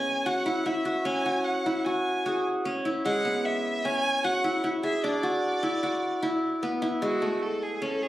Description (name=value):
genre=contemporary instrumental, chamber music in an uneven meter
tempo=151 BPM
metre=5/4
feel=straight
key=F# minor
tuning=A4 = 436 Hz
part: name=rich violin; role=melody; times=0.0-8.1 s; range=F#4 to G#5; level=-30 LUFS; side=right 1 dB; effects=none
part: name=qanun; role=arpeggios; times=0.0-8.1 s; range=G#3 to G#4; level=-26 LUFS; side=equal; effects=none
part: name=growling clarinet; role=second line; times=2.3-2.9 s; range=G#4 to C#5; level=-34 LUFS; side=right 3 dB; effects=none
room=light reverb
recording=recorded on a phone in the room, club reverb, compression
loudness=-25 LUFS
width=side -14 dB against mid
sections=0.0-7.0 A section; 7.0-8.1 B section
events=none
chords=0.0 C#m7; 1.1 F#sus2; 3.0 C#m7; 5.0 E5; 7.0 F#m7